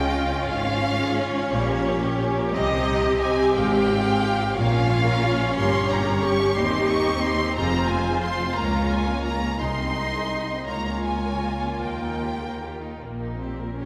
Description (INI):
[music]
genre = classical, slow romantic movement for string orchestra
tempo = 50-62 BPM (dotted quarters)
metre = 6/8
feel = rubato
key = unclear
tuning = A4 = 442 Hz
[part]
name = rich studio violin section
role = melody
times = 0.0-13.0 s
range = Eb5 to Db6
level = -30 LUFS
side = equal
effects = none
[part]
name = rich studio violin section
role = second line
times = 0.0-13.9 s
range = G3 to F5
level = -32 LUFS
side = equal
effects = none
[part]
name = warm studio viola section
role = accompaniment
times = 0.0-13.9 s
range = Bb3 to G4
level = -28 LUFS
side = equal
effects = none
[part]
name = warm studio cello section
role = bass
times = 0.0-13.9 s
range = C2 to Db3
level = -31 LUFS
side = equal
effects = none
[part]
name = warm studio double bass section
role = bass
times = 0.0-13.9 s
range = F1 to Eb2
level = -31 LUFS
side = equal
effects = none
[sound]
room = wet concert hall reverb, RT60 2.5 s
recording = none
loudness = -23 LUFS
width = mono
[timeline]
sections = 0.0-13.9 A section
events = none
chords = 0.0 Db; 1.5 Gdim/Bb; 2.5 Cm; 3.6 Fm/Ab; 4.6 Bbm; 5.6 Gdim; 6.6 Cm/Eb; 7.6 Fm; 8.6 Bbm/Db; 9.6 Ab/C; 10.7 Bbm/Db; 11.8 Eb